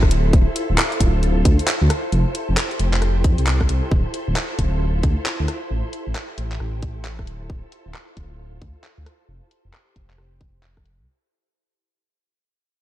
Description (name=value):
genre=UK garage, two-step garage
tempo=134 BPM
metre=4/4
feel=swing 63% on 16ths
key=D minor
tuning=A4 = 440 Hz
part: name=soft string machine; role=sustained chords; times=0.0-11.1 s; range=E4 to C5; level=-28 LUFS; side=equal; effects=ensemble chorus, sidechain pumping
part: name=dark detuned saw bass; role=bass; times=0.0-11.1 s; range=D1 to F2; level=-20 LUFS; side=equal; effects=none
part: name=electronic kick drum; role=drums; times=0.0-10.8 s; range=none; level=-18 LUFS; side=equal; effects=studio ambience
part: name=garage drum kit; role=drums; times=0.0-11.0 s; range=handclaps, hi-hat, rim click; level=-25 LUFS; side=equal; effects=low-pass filter on hats, studio ambience, low-pass filter on perc, low-pass filter on snare
room=light reverb, digital ambience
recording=dark, warm production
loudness=-18 LUFS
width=side -13 dB against mid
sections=0.0-11.1 A section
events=fade-out 0.0-11.1; filter sweep on detuned saw bass 0.0-11.1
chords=0.1 Dm9; 2.1 Fmaj9; 3.9 Dm9; 5.7 Am7; 7.3 Dm9; 9.3 Fmaj9